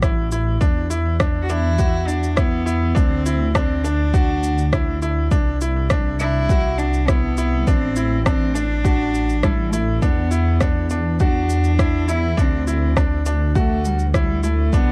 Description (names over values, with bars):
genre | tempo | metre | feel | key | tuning
piano and strings electronica | 102 BPM | 4/4 | straight | unclear | A4 = 443 Hz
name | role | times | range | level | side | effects
bright upright piano | riff | 0.0-14.9 s | D4 to F#4 | -28 LUFS | equal | delay
dark detuned saw bass | bass | 0.0-14.9 s | A1 to E2 | -23 LUFS | equal | tube saturation, sidechain pumping
electronic kick drum | drums | 0.0-14.8 s | none | -22 LUFS | equal | none
electronic rim click, shaker and woodblock | drums | 0.0-14.8 s | none | -28 LUFS | equal | none
warm cello | melody | 1.4-14.9 s | G3 to F#4 | -27 LUFS | equal | none
room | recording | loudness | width
little or no reverb | dark, warm production | -19 LUFS | mono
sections
0.0-14.9 A section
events
none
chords
0.0 A5; 0.6 E5; 3.0 D7; 5.3 Cmaj7; 7.7 Am; 10.0 E5; 12.4 D7